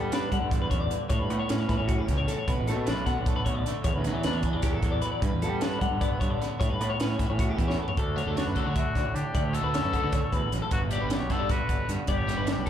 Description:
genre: math rock and midwest emo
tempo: 306 BPM (eighths)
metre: 7/8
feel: straight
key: D major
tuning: A4 = 440 Hz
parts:
  - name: twangy electric guitar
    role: accompaniment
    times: 0.0-12.7 s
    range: D2 to F#4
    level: -34 LUFS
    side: right 8 dB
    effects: slapback echo
  - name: twelve-string electric guitar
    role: arpeggios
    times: 0.0-12.7 s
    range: F#4 to F#5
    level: -33 LUFS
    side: left 5 dB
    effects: slapback echo, digital delay
  - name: fuzz fingered electric bass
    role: bass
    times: 0.0-12.7 s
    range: G1 to G3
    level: -30 LUFS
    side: equal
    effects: overdrive
  - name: crisp fusion drum kit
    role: drums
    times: 0.1-12.7 s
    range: hi-hat, kick drum, snare drum, toms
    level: -29 LUFS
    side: equal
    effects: none
  - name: breathy trumpet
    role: melody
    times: 8.0-12.7 s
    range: D4 to B4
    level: -33 LUFS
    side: left 4 dB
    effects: slapback echo, digital delay
  - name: overdriven electric guitar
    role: riff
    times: 8.2-12.7 s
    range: F#3 to G4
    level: -36 LUFS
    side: equal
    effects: slapback echo
room: small room ambience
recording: live gig heard through the venue's PA, club reverb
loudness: -25 LUFS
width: side -10 dB against mid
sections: 0.0-8.0 A section; 8.0-12.7 B section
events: drum fill 7.7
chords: 0.0 G6; 1.1 A9; 2.5 Bm7; 3.9 E7sus2; 5.2 G69; 6.6 A9; 8.0 Dmaj7; 10.7 Gmaj7

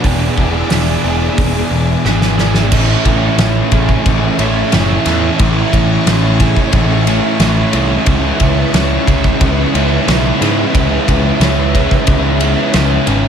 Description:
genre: rock, shoegaze and dream pop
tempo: 90 BPM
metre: 4/4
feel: straight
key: A major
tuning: A4 = 440 Hz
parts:
  - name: phased string machine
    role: sustained chords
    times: 0.0-13.3 s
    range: G#4 to D6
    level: -24 LUFS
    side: equal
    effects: ensemble chorus, phaser
  - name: electric guitar through a small old amp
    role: arpeggios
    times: 0.0-13.3 s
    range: E3 to G#4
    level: -24 LUFS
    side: left 1 dB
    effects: analog chorus, analog delay
  - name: biting overdriven guitar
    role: riff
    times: 0.0-13.3 s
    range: A2 to G#4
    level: -17 LUFS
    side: right 9 dB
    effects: reverse reverb
  - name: thick fuzz guitar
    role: riff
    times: 0.0-13.3 s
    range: E2 to C#4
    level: -18 LUFS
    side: left 10 dB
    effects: distortion, analog chorus
  - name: growling picked electric bass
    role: bass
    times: 0.0-13.3 s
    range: E1 to G#2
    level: -16 LUFS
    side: equal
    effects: overdrive
  - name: loose indie drum kit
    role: drums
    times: 0.0-13.2 s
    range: crash cymbal, hi-hat, kick drum, ride cymbal, snare drum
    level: -16 LUFS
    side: equal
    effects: none
room: light reverb, small room ambience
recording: none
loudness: -10 LUFS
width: side -8 dB against mid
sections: 0.0-2.7 A section; 2.7-13.3 B section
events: drum fill 2.1-2.7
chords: 0.1 E7; 2.7 Amaj7; 8.1 C#m7

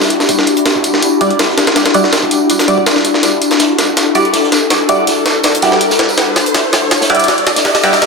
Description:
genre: drum and bass, jungle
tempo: 163 BPM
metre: 4/4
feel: straight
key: E minor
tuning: A4 = 440 Hz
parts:
  - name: ethereal airy pad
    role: sustained chords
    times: 0.0-8.1 s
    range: D4 to A4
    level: -15 LUFS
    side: left 3 dB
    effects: ensemble chorus, built-in reverb, vintage 12-bit sampler grit
  - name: breakbeat sampler-style drum kit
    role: drums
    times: 0.0-8.1 s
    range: hi-hat, kick drum, snare drum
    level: -14 LUFS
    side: equal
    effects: high-pass filter on hats, small room ambience, high-pass filter on snare, high-pass filter on kick
  - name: vintage drum kit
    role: drums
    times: 0.0-8.1 s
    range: hi-hat, snare drum, tambourine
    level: -20 LUFS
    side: right 2 dB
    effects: high-pass filter on hats, small room ambience, high-pass filter on snare, high-pass filter on perc, high-pass filter on room
  - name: riser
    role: sound effects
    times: 0.4-8.1 s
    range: none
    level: -22 LUFS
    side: right 1 dB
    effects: none
  - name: band-passed chord stab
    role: stabs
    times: 1.2-7.9 s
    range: G3 to D5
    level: -15 LUFS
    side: right 2 dB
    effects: phaser, dub echo
room: wet digital room reverb, RT60 1.0 s, small room ambience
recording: dense, heavily limited modern master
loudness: -9 LUFS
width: side -3 dB against mid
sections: 0.0-8.1 A section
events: build-up 0.0-8.1; filter sweep on ambient pad 0.0-8.1; filter sweep on synth stab 0.0-8.1; riser 0.4-8.1; drum fill 3.2-8.1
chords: 0.0 Em9

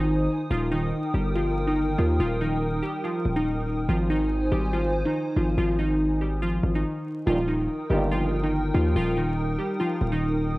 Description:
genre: hip hop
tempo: 142 BPM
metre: 4/4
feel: half-time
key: Eb major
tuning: A4 = 437 Hz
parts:
  - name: glassy digital keys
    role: melody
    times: 0.0-10.6 s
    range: Eb3 to G4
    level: -26 LUFS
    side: equal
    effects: chorus, low-pass filter
  - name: hollow soft pad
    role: sustained chords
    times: 0.0-10.6 s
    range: Eb4 to Eb6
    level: -32 LUFS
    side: equal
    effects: ensemble chorus
  - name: hard-hitting 808-style bass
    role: bass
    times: 0.0-10.6 s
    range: Eb1 to Eb2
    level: -26 LUFS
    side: equal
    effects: none
  - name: mellow brass ensemble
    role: stabs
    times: 7.3-8.3 s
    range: G2 to Eb3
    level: -30 LUFS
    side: right 1 dB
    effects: analog delay
room: little or no reverb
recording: home recording on cassette, vinyl crackle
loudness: -22 LUFS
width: side -20 dB against mid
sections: 0.0-7.3 A section; 7.3-10.6 B section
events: stop 6.8-7.3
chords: 0.0 Ab; 0.5 Eb; 3.9 Ab; 7.3 Eb

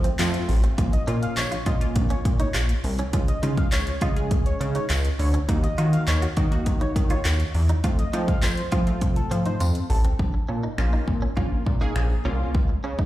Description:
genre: dance-pop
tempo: 102 BPM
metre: 4/4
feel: straight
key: unclear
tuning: A4 = 440 Hz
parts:
  - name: direct-recorded clean electric guitar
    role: riff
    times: 0.0-13.1 s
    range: A3 to Gb4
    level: -34 LUFS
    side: right 3 dB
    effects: ensemble chorus
  - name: chorused synth bass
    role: bass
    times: 0.0-13.0 s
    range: A1 to F3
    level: -23 LUFS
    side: equal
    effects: sidechain pumping
  - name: pop drum kit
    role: drums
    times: 0.0-13.1 s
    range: finger snaps, handclaps, hi-hat, kick drum, toms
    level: -24 LUFS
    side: equal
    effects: overdrive
  - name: funky polysynth comp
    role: accompaniment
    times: 0.2-12.5 s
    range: F3 to Ab4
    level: -31 LUFS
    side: equal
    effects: chorus, sidechain pumping
  - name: tambourine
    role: percussion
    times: 0.2-9.7 s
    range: none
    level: -41 LUFS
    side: left 6 dB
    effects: none
  - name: octave-doubled lead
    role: melody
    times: 0.9-10.0 s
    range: A4 to F5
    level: -33 LUFS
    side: equal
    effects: chorus, sidechain pumping, digital delay
room: digital ambience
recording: played on a big sound system in a bare room, large studio reverb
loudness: -21 LUFS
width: side -15 dB against mid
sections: 0.8-10.2 A section; 10.2-13.1 B section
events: drum fill 9.0-10.2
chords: 0.0 F; 0.8 Bbm; 3.1 Db; 5.5 Ebm; 7.8 F; 10.2 Bbm; 12.5 N.C.

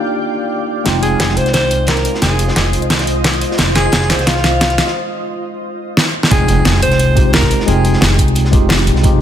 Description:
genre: liquid drum and bass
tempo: 176 BPM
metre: 4/4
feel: swing 53% on 16ths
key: F dorian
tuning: A4 = 440 Hz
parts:
  - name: tine electric piano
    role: accompaniment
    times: 0.0-9.2 s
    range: Ab3 to G5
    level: -20 LUFS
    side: equal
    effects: overdrive, medium stereo tremolo
  - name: shimmering ambient pad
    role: sustained chords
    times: 0.0-6.3 s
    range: Eb3 to G5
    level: -23 LUFS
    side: equal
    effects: chorus, built-in reverb, vintage 12-bit sampler grit, sidechain pumping
  - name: upright bass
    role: bass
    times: 0.9-9.2 s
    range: F1 to C2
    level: -16 LUFS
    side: equal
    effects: none
  - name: crunchy breakbeat drum kit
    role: drums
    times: 0.9-9.1 s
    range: hi-hat, snare drum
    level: -24 LUFS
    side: equal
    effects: high-pass filter on hats, high-pass filter on snare, high-pass filter on room
  - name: electronic kick drum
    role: drums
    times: 0.9-9.1 s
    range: none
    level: -16 LUFS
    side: equal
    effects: high-pass filter on kick
  - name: pop drum kit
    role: drums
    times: 0.9-9.1 s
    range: hi-hat, snare drum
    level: -16 LUFS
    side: equal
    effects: overdrive, low-pass filter on snare, low-pass filter on hats, low-pass filter on room
  - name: clear alto saxophone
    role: melody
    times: 1.0-8.2 s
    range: F4 to C5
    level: -19 LUFS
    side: right 1 dB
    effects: tape echo
  - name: impact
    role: sound effects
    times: 6.3-7.7 s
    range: none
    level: -23 LUFS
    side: equal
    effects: none
room: light reverb, small room ambience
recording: none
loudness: -11 LUFS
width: side -10 dB against mid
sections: 0.9-6.3 A section; 6.3-9.2 B section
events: build-up 0.9-6.3; drum fill 0.9-4.9, 6.0-6.3; break 4.9-6.3; drop 6.3-9.2; impact 6.3-7.7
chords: 0.0 Ebmaj9; 0.9 Fm7; 6.1 F5; 6.3 Fm7

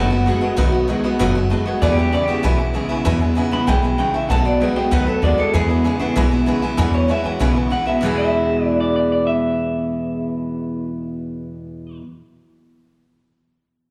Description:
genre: rockabilly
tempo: 193 BPM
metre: 4/4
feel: straight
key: E major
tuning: A4 = 440 Hz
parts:
  - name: electric guitar through a small old amp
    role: melody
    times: 0.0-12.0 s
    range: E4 to B5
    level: -25 LUFS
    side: equal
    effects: spring reverb, slapback echo, tape echo
  - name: honky-tonk upright piano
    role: accompaniment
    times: 0.0-12.0 s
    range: B4 to A5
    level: -31 LUFS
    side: equal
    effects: slapback echo
  - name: picked steel-string acoustic guitar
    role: accompaniment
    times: 0.0-12.0 s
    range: E2 to F#4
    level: -24 LUFS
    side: equal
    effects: slapback echo
  - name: electric guitar through a small old amp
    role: riff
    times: 0.0-12.0 s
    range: E2 to G#4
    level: -27 LUFS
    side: equal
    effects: ensemble chorus, slapback echo
  - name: upright bass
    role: bass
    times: 0.0-12.0 s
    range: F#1 to E2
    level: -23 LUFS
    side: equal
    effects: none
room: light reverb, small room ambience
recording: live gig heard through the venue's PA, club reverb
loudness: -19 LUFS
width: mono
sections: 0.0-6.8 A section; 6.8-8.0 B section; 8.0-10.5 C section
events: none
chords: 0.0 B7; 1.8 E; 4.3 B7; 5.5 E

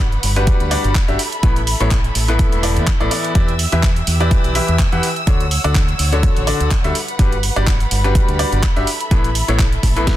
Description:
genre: piano house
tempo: 125 BPM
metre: 4/4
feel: swing 55% on 16ths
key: unclear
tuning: A4 = 440 Hz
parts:
  - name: dark symphonic violin section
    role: sustained chords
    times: 0.0-10.2 s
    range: G4 to E6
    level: -26 LUFS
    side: equal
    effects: sidechain pumping
  - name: bright upright piano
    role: riff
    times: 0.0-10.2 s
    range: A2 to F#5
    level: -21 LUFS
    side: left 1 dB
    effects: sidechain pumping, tape echo
  - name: deep dub fingered electric bass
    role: bass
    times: 0.0-10.1 s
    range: E1 to E2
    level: -19 LUFS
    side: equal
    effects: sidechain pumping
  - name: house drum kit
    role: drums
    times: 0.1-10.2 s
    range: handclaps, hi-hat, snare drum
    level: -24 LUFS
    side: right 2 dB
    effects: soft clipping on snare
  - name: electronic kick drum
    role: drums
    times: 0.5-10.2 s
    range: none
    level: -16 LUFS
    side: equal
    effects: none
room: digital ambience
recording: dense, heavily limited modern master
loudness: -14 LUFS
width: side -13 dB against mid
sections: 0.0-10.2 A section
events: none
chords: 0.0 Gmaj7; 1.2 Asus2; 3.4 Em7; 5.3 Dmaj7; 7.0 Gmaj7; 8.9 Asus2

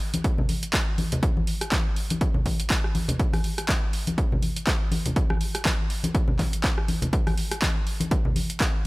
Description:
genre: house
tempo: 122 BPM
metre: 4/4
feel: swing 57% on 16ths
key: none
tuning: none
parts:
  - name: punchy analog drum machine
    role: drums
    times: 0.0-8.7 s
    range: handclaps, hi-hat, rim click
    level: -29 LUFS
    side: right 1 dB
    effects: overdrive
  - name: congas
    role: percussion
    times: 0.1-8.5 s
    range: none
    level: -29 LUFS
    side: left 1 dB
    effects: none
  - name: electronic kick drum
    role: drums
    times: 0.2-8.7 s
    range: none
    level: -24 LUFS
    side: equal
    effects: overdrive
room: digital ambience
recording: none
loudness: -22 LUFS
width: side -22 dB against mid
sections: 0.0-8.9 A section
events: none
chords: none

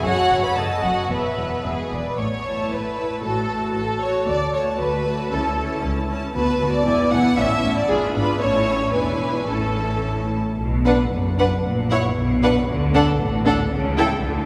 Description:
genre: quick classical-period movement for string orchestra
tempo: 115 BPM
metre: 2/4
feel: straight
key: A major, B minor from 10.6 s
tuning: A4 = 439 Hz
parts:
  - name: clear studio violin section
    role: melody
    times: 0.0-14.1 s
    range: B4 to B5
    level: -31 LUFS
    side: equal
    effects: none
  - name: rich studio violin section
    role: second line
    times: 0.0-14.1 s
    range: B3 to F#5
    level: -26 LUFS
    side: equal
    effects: none
  - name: rich studio viola section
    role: accompaniment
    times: 0.0-14.1 s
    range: A3 to E5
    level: -28 LUFS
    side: equal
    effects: none
  - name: rich studio cello section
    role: bass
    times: 0.0-14.5 s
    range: C#2 to D3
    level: -28 LUFS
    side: equal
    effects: none
  - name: rich studio double bass section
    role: bass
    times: 0.0-14.5 s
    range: E1 to D2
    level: -29 LUFS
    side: equal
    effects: none
room: wet cathedral reverb, RT60 5.1 s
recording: recorded in a church or concert hall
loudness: -21 LUFS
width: mono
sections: 0.0-2.2 A section; 2.2-10.6 B section; 10.6-14.5 C section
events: none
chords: 0.0 F#5; 1.1 E5; 1.6 E; 2.2 A; 3.2 F#m/A; 4.3 D; 5.3 A/C#; 6.4 Bm7/D; 6.9 E7; 7.4 A; 7.9 G#dim7; 8.4 A; 8.9 E7; 9.5 A; 10.6 Bm; 11.6 F#7/A#; 12.2 Bm; 12.7 D; 13.7 A7/C#

